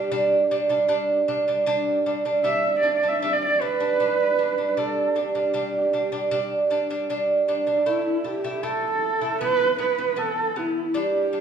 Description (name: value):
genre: mongolian traditional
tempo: 78 BPM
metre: 4/4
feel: straight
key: G gong mode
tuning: A4 = 442 Hz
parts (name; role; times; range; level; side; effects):
- dark horsehead fiddle; melody; 0.0-11.4 s; D4 to E5; -24 LUFS; right 3 dB; none
- lute; arpeggios; 0.0-11.4 s; E3 to E4; -22 LUFS; right 2 dB; none
room: wet recital hall reverb, RT60 1.3 s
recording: studio ambience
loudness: -20 LUFS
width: side -7 dB against mid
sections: 0.0-7.9 A section; 7.9-11.4 B section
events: none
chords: 0.0 G5; 7.9 A5; 9.4 E5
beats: 0.12 0.90 | 1.67 2.44 3.22 4.00 | 4.77 5.54 6.32 7.09 | 7.87 8.64 9.41 10.18 | 10.95